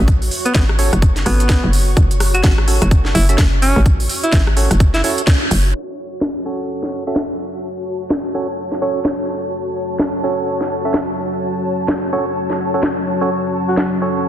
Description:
bass house; 127 BPM; 4/4; swing 60% on 16ths; F# minor; A4 = 440 Hz
hollow knocking FM bass; bass; 0.0-5.7 s; F#1 to A1; -15 LUFS; equal; tube saturation, sidechain pumping
ethereal airy pad; texture; 0.0-14.3 s; F#4 to C#6; -25 LUFS; left 1 dB; ensemble chorus, built-in reverb, sidechain pumping
electronic kick drum; drums; 0.1-5.4 s; -15 LUFS; equal
garage drum kit; drums; 0.1-13.9 s; hi-hat, rim click, snare drum; -21 LUFS; equal
mellow alto saxophone; melody; 0.5-5.1, 13.7-13.9 s; B3 to F#4; -22 LUFS; right 1 dB; digital delay
percussive organ stab; stabs; 0.8-14.3 s; C#4 to E5; -23 LUFS; right 3 dB; chorus, sidechain pumping, digital delay
dark analog pad; sustained chords; 6.4-14.3 s; F#3 to C#5; -25 LUFS; left 1 dB; chorus, sidechain pumping
light reverb; dense, heavily limited modern master, low-pass filter; -14 LUFS; side -11 dB against mid
0.0-5.7 A section; 5.7-14.3 B section
band accent 5.3; filter sweep on synth stab 5.7-14.3
0.0 F#m
| 0.08 0.55 1.02 1.50 | 1.97 2.44 2.91 3.39 | 3.86 4.33 4.80 5.28 | 5.75 6.22 6.69 7.17 | 7.64 8.11 8.58 9.05 | 9.53 10.00 10.47 10.95 | 11.42 11.89 12.36 12.84 | 13.31 13.78 14.25

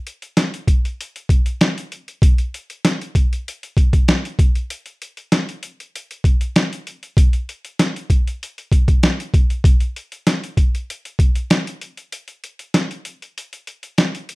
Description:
hip hop; 97 BPM; 4/4; swing 55% on 16ths
boom bap sampler-style drum kit; drums; 0.1-14.3 s; hi-hat, kick drum, snare drum; -16 LUFS; equal
light reverb; rough home demo mix; -16 LUFS; side -24 dB against mid
0.0-14.3 A section
break 4.7-5.9, 12.1-14.3
0.36 0.98 1.60 | 2.22 2.84 3.46 4.08 | 4.70 5.31 5.93 6.55 | 7.17 7.79 8.41 9.03 | 9.64 10.26 10.88 11.50 | 12.12 12.74 13.36 13.97

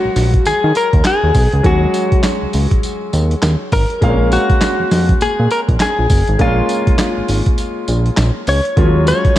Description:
R&B, new jack swing; 101 BPM; 4/4; swing 60% on 16ths; Eb minor; A4 = 443 Hz
direct-recorded clean electric guitar; melody; 0.0-9.4 s; F4 to Db5; -18 LUFS; left 1 dB; tape echo
clear concert grand piano; accompaniment; 0.0-9.4 s; F3 to F5; -21 LUFS; left 1 dB
fat analog bass; bass; 0.0-9.1 s; Gb1 to Eb3; -15 LUFS; equal
boom bap sampler-style drum kit; drums; 0.2-9.4 s; handclaps, hi-hat, kick drum, snare drum, tambourine; -16 LUFS; equal
light reverb, digital ambience; dark, warm production; -12 LUFS; side -14 dB against mid
0.0-9.4 A section
kick muted 7.6-8.8
0.0 Ebm11; 4.0 Bbm7; 8.8 Ebm11
0.45 1.05 | 1.64 2.24 2.83 3.42 | 4.02 4.61 5.21 5.80 | 6.39 6.99 7.58 8.18 | 8.77 9.36

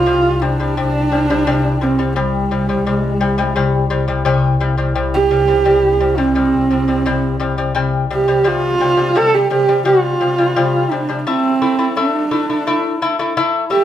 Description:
mongolian traditional, Mongolian folk; 86 BPM; 4/4; straight; C zhi mode; A4 = 445 Hz
dark horsehead fiddle; melody; 0.0-13.8 s; G3 to A4; -16 LUFS; right 3 dB
lute; arpeggios; 0.0-13.8 s; C3 to E4; -18 LUFS; left 4 dB
dark double bass; drone; 0.0-8.5 s; C2; -22 LUFS; equal
wet large studio reverb, RT60 1.0 s; band playing live in one room; -13 LUFS; side -11 dB against mid
0.0-8.5 A section; 8.5-13.8 B section
0.0 C5; 11.3 A5
| 0.07 0.77 1.47 2.16 | 2.86 3.56 4.26 4.97 | 5.67 6.37 7.07 7.77 | 8.47 9.17 9.87 10.57 | 11.26 11.96 12.66 13.36

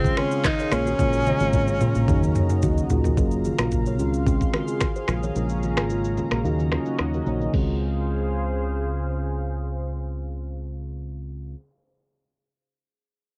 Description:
afrobeats; 110 BPM; 4/4; straight; Db major; A4 = 439 Hz
warm tenor saxophone; melody; 0.0-2.9 s; C4 to Eb4; -28 LUFS; equal; cassette tape
mellow tine electric piano; accompaniment; 0.0-11.5 s; Db3 to F4; -31 LUFS; equal; cassette tape
lush unison pad; sustained chords; 0.0-11.5 s; Db3 to C6; -35 LUFS; equal; chorus, cassette tape
kalimba; riff; 0.0-9.1 s; Eb4 to Eb5; -36 LUFS; equal; cassette tape, analog delay
fingered electric bass; bass; 0.0-11.5 s; Gb1 to Eb2; -29 LUFS; equal
afro-pop drum kit; drums; 0.0-7.7 s; crash cymbal, finger snaps, handclaps, kick drum, rim click, shaker, toms; -26 LUFS; equal; cassette tape
congas; percussion; 0.0-7.8 s; -38 LUFS; equal
light reverb; home recording on cassette, low-pass filter; -24 LUFS; mono
0.0-3.2 A section; 3.2-7.5 B section; 7.5-11.9 C section
drum fill 1.0-3.2
0.0 Dbmaj7; 0.7 Bbm7; 2.1 Ebm7; 3.2 Gbmaj7; 4.0 Dbmaj7; 5.1 Bbm7; 6.4 Ebm7; 7.5 Dbmaj7
0.45 | 0.99 1.54 2.08 2.63 | 3.17 3.72 4.26 4.81 | 5.36 5.90 6.45 6.99 | 7.54 8.08 8.63 9.17 | 9.72 10.26 10.81 11.36

